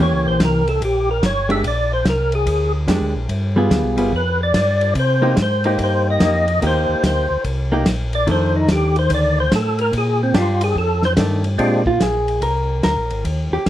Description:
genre	soul jazz organ trio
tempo	145 BPM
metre	4/4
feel	swing 65% on 8ths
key	Bb mixolydian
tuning	A4 = 440 Hz
part	percussive tonewheel organ	melody	0.0-11.8 s	Ab3 to E5	-19 LUFS	equal	slow rotary speaker, chorus vibrato
part	vintage hollow-body jazz guitar	accompaniment	0.0-13.7 s	Eb3 to Bb4	-20 LUFS	equal	none
part	mellow tonewheel organ	bass	0.0-13.7 s	G1 to C3	-20 LUFS	equal	slow rotary speaker
part	warm soul drum kit	drums	0.4-13.7 s	hi-hat, kick drum, ride cymbal, snare drum	-23 LUFS	equal	none
room	moderate studio reverb, RT60 0.6 s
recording	vinyl crackle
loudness	-15 LUFS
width	side -12 dB against mid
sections	0.0-11.6 A section; 11.6-13.7 A section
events	tonewheel organ solo 0.0-11.6; hollow-body jazz guitar solo 11.6-13.7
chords	0.0 Edim7; 1.6 Bb13; 3.3 G7b9; 5.0 Cm7; 8.3 F6; 9.9 Bb6; 10.8 F13; 11.6 Bb13

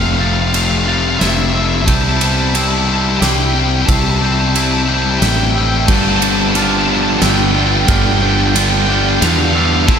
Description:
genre	post-rock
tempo	90 BPM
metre	3/4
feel	straight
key	unclear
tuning	A4 = 439 Hz
part	dark smooth lead guitar	melody	0.0-10.0 s	E5 to A5	-20 LUFS	right 2 dB	overdrive, analog delay
part	rich symphonic string section	sustained chords	0.0-10.0 s	E4 to B5	-30 LUFS	right 2 dB	none
part	glockenspiel with rubber mallets	arpeggios	0.0-10.0 s	D6 to A6	-26 LUFS	right 8 dB	analog delay
part	twangy electric guitar	arpeggios	0.0-10.0 s	G2 to F4	-26 LUFS	equal	none
part	distorted electric guitar	riff	0.0-10.0 s	F2 to E4	-17 LUFS	left 10 dB	overdrive
part	fuzz fingered electric bass	bass	0.0-10.0 s	F1 to E2	-17 LUFS	right 1 dB	overdrive
part	big rock drum kit	drums	0.5-10.0 s	crash cymbal, kick drum, ride cymbal, snare drum	-18 LUFS	right 1 dB	none
part	overdriven electric guitar	riff	5.9-10.0 s	G2 to E4	-18 LUFS	right 16 dB	none
room	little or no reverb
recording	none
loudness	-11 LUFS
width	side -7 dB against mid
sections	0.0-10.0 A section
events	build-up 0.0-10.0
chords	0.0 Fmaj7; 1.9 Cmaj7; 5.9 G7sus4

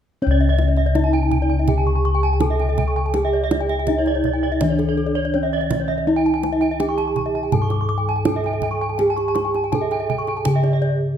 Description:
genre	Balinese gamelan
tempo	82 BPM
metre	4/4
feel	straight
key	C# pelog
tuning	A4 = 438 Hz
part	gamelan-type bronze metallophone	melody	0.2-11.2 s	C#4 to A4-40c	-24 LUFS	right 2 dB	none
part	gamelan-type bronze metallophone	arpeggios	0.2-10.9 s	A4-40c to D6	-26 LUFS	left 5 dB	none
part	gamelan-type bossed gongs	bass	0.2-11.2 s	C#2 to G#4-45c	-20 LUFS	left 2 dB	none
part	gamelan-type bronze metallophone	arpeggios	0.3-10.8 s	C#5 to C#6	-26 LUFS	right 6 dB	none
part	kendang	percussion	0.6-10.7 s	none	-26 LUFS	right 6 dB	none
room	moderate recital hall reverb, RT60 1.4 s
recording	dark, warm production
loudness	-17 LUFS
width	side -9 dB against mid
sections	0.2-11.2 A section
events	break 10.8-11.2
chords	none

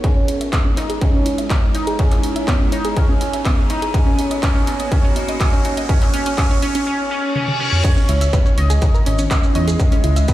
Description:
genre	melodic techno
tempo	123 BPM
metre	4/4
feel	straight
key	C# dorian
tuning	A4 = 444 Hz
part	resonant sweep polysynth	melody	0.0-10.3 s	C#4 to D#5	-23 LUFS	right 1 dB	chorus, sidechain pumping, digital delay
part	evolving wavetable pad	sustained chords	0.0-10.3 s	G#3 to F#4	-28 LUFS	equal	phaser, built-in reverb, sidechain pumping
part	wide unison pluck	arpeggios	0.0-10.3 s	B3 to E6	-26 LUFS	right 1 dB	sidechain pumping, ping-pong delay
part	electronic kick drum	drums	0.0-10.3 s	none	-16 LUFS	equal	distortion, overdrive
part	techno drum kit	drums	0.0-10.3 s	crash cymbal, handclaps, hi-hat, toms	-26 LUFS	equal	overdrive
part	riser and reverse cymbal	sound effects	0.0-7.8 s	none	-30 LUFS	left 2 dB	none
part	swelling detuned saw bass	bass	0.3-10.2 s	F#1 to E2	-20 LUFS	equal	sidechain pumping, high-pass filter
part	maracas	percussion	7.8-10.3 s	none	-32 LUFS	right 4 dB	none
room	light reverb, digital ambience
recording	played on a big sound system in a bare room, stone room reverb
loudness	-15 LUFS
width	side -14 dB against mid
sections	0.0-7.8 A section; 7.8-10.3 B section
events	build-up 0.0-7.8; riser 0.0-6.9; filter sweep on synth arpeggio sound 0.0-7.8; filter sweep on ambient pad 0.0-7.8; reverse cymbal 6.9-7.8; drum fill 7.4-7.8; drop 7.8-10.3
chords	0.0 C#madd9; 3.9 Bmaj7; 7.8 C#madd9

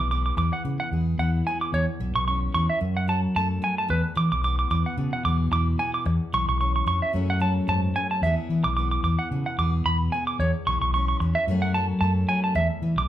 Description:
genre	highlife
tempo	111 BPM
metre	4/4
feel	swing 55% on 16ths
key	E major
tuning	A4 = 440 Hz
part	picked steel-string acoustic guitar	accompaniment	0.0-13.1 s	E2 to G#4	-30 LUFS	left 2 dB	none
part	clean electric guitar	arpeggios	0.0-13.1 s	B4 to D6	-26 LUFS	right 2 dB	none
part	fingered electric bass	bass	0.0-13.1 s	B1 to E3	-25 LUFS	equal	none
room	moderate large studio reverb, RT60 0.9 s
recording	band playing live in one room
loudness	-22 LUFS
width	side -12 dB against mid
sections	0.0-13.1 A section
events	none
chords	0.0 Eadd9; 1.7 C#m; 2.8 F#m; 3.9 E; 6.1 C#m; 7.1 F#madd9; 8.2 E; 10.4 C#m; 11.5 F#madd9; 12.6 E

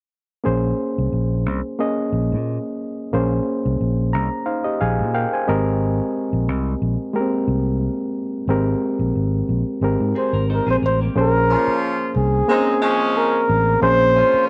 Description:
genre	soul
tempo	90 BPM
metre	4/4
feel	swing 54% on 16ths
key	unclear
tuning	A4 = 440 Hz
part	overdriven reed electric piano	accompaniment	0.4-14.5 s	Ab3 to Bb5	-24 LUFS	equal	none
part	fingered electric bass	bass	0.5-14.4 s	Ab1 to Bb2	-23 LUFS	equal	none
part	breathy flugelhorn	melody	10.2-14.5 s	Ab4 to C5	-21 LUFS	equal	none
part	electric guitar through a small old amp	riff	10.2-11.3 s	Bb3 to C5	-32 LUFS	equal	none
part	warm horn section	stabs	11.5-14.5 s	F3 to F4	-25 LUFS	equal	none
room	light reverb, studio reverb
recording	none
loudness	-20 LUFS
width	mono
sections	0.5-11.2 A section; 11.2-14.5 B section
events	reed electric piano fill 3.8-5.8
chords	0.5 Bbm9; 5.5 Abmaj9; 11.2 Bbm9

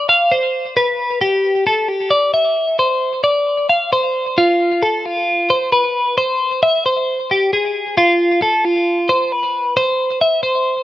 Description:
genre	rock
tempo	133 BPM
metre	4/4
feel	straight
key	unclear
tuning	A4 = 436 Hz
part	twelve-string electric guitar	solo	0.0-10.8 s	F4 to F5	-14 LUFS	equal	digital delay
room	wet small room reverb, RT60 0.5 s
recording	rough home demo mix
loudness	-14 LUFS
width	side -14 dB against mid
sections	0.0-4.4 A section; 4.4-10.8 B section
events	none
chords	none

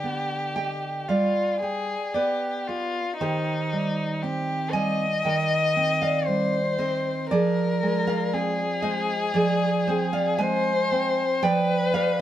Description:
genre	romantic duo for violin and classical guitar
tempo	58 BPM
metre	4/4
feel	rubato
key	C minor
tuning	A4 = 442 Hz
part	warm violin	melody	0.0-12.2 s	Eb4 to Eb5	-26 LUFS	left 3 dB	none
part	nylon-string guitar	accompaniment	0.0-12.2 s	D3 to Ab5	-24 LUFS	right 2 dB	none
room	wet studio reverb, RT60 0.6 s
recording	band playing live in one room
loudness	-22 LUFS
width	side -11 dB against mid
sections	0.0-12.2 A section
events	none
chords	0.0 G7/D; 3.2 Cm/Eb; 7.3 Dm7b5/F; 11.4 G7/F

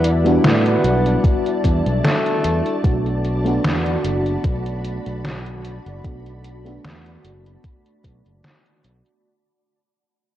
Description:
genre	vaporwave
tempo	75 BPM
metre	4/4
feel	swing 54% on 16ths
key	unclear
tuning	A4 = 440 Hz
part	breathy tenor saxophone	melody	0.0-2.8 s	A3 to B3	-25 LUFS	equal	analog delay
part	FM electric piano with soft pad layer	accompaniment	0.0-9.3 s	G3 to F#4	-23 LUFS	equal	lush chorus, analog delay
part	soft string machine	sustained chords	0.0-9.2 s	E4 to B5	-27 LUFS	equal	ensemble chorus
part	overdriven fingered electric bass	bass	0.0-9.0 s	F#1 to A2	-22 LUFS	equal	low-pass filter
part	detuned 8-bit digital drum machine	drums	0.0-9.2 s	hi-hat, snare drum	-22 LUFS	equal	gated reverb
part	electronic kick drum	drums	1.2-8.2 s	none	-18 LUFS	equal	overdrive
room	moderate lush hall reverb, RT60 2.5 s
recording	cassette tape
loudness	-16 LUFS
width	side -12 dB against mid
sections	0.0-9.2 A section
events	fade-out 0.0-9.2; filter sweep on fingered electric bass 0.0-9.2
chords	0.0 Em7; 2.8 Bm7

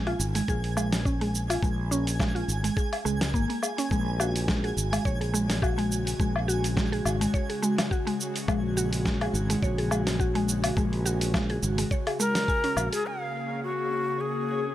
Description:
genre	organic downtempo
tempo	105 BPM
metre	4/4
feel	swing 55% on 16ths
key	unclear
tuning	A4 = 439 Hz
part	mallet-like synth pluck	arpeggios	0.0-13.0 s	Ab3 to Ab5	-30 LUFS	equal	chorus, vintage 12-bit sampler grit, digital delay
part	fretless electric bass	bass	0.0-12.9 s	Ab1 to Db2	-29 LUFS	equal	none
part	twinkling granular texture	texture	0.0-14.7 s	Db4 to Ab5	-40 LUFS	right 3 dB	built-in reverb
part	dusty soul sampler-style drum kit	drums	0.1-13.0 s	hi-hat, shaker, snare drum, woodblock	-31 LUFS	equal	low-pass filter on perc, low-pass filter on hats, low-pass filter on snare, low-pass filter on room
part	electronic kick drum	drums	0.5-12.6 s	none	-29 LUFS	equal	none
part	airy breathy pad	sustained chords	3.9-14.7 s	Db3 to Ab4	-33 LUFS	left 1 dB	chorus, sidechain pumping
part	breathy bright Native American-style cedar flute	melody	12.2-14.7 s	Gb4 to F5	-28 LUFS	left 1 dB	digital delay
room	light reverb, digital ambience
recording	none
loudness	-24 LUFS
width	side -13 dB against mid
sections	0.0-13.1 A section; 13.1-14.7 B section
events	filter sweep on synth pluck 0.0-13.1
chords	0.0 Bbm7; 3.9 Gbsus2; 13.1 Bbm7

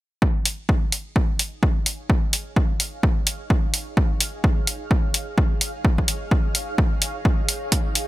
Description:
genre	piano house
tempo	128 BPM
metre	4/4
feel	swing 59% on 16ths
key	unclear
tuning	A4 = 440 Hz
part	electronic kick drum	drums	0.2-7.8 s	none	-20 LUFS	equal	overdrive
part	granular cloud pad	texture	1.6-8.1 s	Eb4 to F5	-34 LUFS	right 2 dB	built-in reverb, analog chorus, sidechain pumping
part	electronic hi-hat	drums	0.5-8.1 s	none	-21 LUFS	equal	none
room	little or no reverb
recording	bright 1980s-style digital production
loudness	-20 LUFS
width	side -17 dB against mid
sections	0.2-8.1 A section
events	fade-in on ambient pad 0.2-8.1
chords	0.2 Eb9sus4

